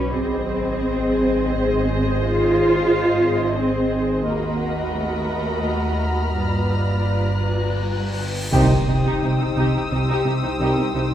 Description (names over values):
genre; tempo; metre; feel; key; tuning
cinematic, suspense film score; 87 BPM; 3/4; straight; unclear; A4 = 440 Hz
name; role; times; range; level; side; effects
muted symphonic violin section; melody; 0.0-11.1 s; C5 to Eb5; -34 LUFS; left 3 dB; none
muted symphonic viola section; accompaniment; 0.0-11.0 s; Eb4 to C5; -26 LUFS; left 1 dB; none
warbly tape-like pad; sustained chords; 0.0-11.1 s; Eb4 to C6; -29 LUFS; left 2 dB; chorus, built-in reverb
muted symphonic cello section; bass; 0.0-11.1 s; C3 to F4; -24 LUFS; right 1 dB; none
muted symphonic double bass section; bass; 0.0-11.0 s; Ab1 to G2; -26 LUFS; right 2 dB; none
organ-like drone; drone; 0.0-11.1 s; G1 to Eb2; -29 LUFS; left 1 dB; ensemble chorus, built-in reverb
muted symphonic violin section; texture; 4.3-11.1 s; Bb5 to F6; -31 LUFS; left 3 dB; none
cymbal swell and impact; sound effects; 7.8-10.6 s; none; -29 LUFS; left 1 dB; none
muted symphonic violin section; second line; 8.5-11.0 s; G4; -29 LUFS; equal; none
bright trombone section; sustained chords; 8.5-10.8 s; Eb3 to G3; -28 LUFS; right 3 dB; none
warm French horn section; sustained chords; 8.5-10.8 s; C4 to Eb4; -28 LUFS; left 2 dB; none
smooth synth bass; riff; 8.5-11.1 s; C3; -21 LUFS; right 1 dB; none
room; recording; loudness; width
moderate scoring stage reverb, RT60 1.6 s; none; -18 LUFS; side -11 dB against mid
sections
0.0-8.5 A section; 8.5-11.1 B section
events
cymbal swell 7.8-8.5; band accent 8.5-9.2; impact 8.5-10.6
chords
0.1 Ab; 4.3 Ebm; 6.4 G7; 8.5 Cm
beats
| 0.13 0.81 1.50 | 2.20 2.89 3.58 | 4.26 4.95 5.66 | 6.38 7.10 7.82 | 8.53 9.22 9.91 | 10.60